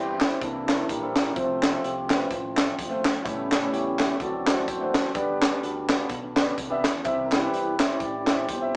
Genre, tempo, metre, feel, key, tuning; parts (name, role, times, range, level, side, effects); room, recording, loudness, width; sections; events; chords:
uptempo gospel; 126 BPM; 4/4; swing 56% on 8ths; C major; A4 = 442 Hz
clear upright piano; accompaniment; 0.0-8.8 s; G2 to F5; -33 LUFS; equal
mellow French horn section; sustained chords; 0.0-8.8 s; D3 to F4; -42 LUFS; equal
tonewheel organ; sustained chords; 0.0-8.8 s; C#3 to D5; -33 LUFS; equal; stopped rotary speaker
fingered electric bass; bass; 0.0-8.8 s; F#1 to E2; -41 LUFS; equal
crisp fusion drum kit; drums; 0.2-8.6 s; hi-hat, kick drum, snare drum; -28 LUFS; equal
group handclap; percussion; 0.2-8.4 s; -33 LUFS; equal
moderate small room ambience, RT60 0.5 s; rough rehearsal-room recording, small speaker sound; -25 LUFS; mono
0.0-8.8 A section
tonewheel organ solo 0.0-8.8
0.4 C7; 1.4 F/C; 3.3 A7; 4.2 D7; 5.2 G; 7.1 C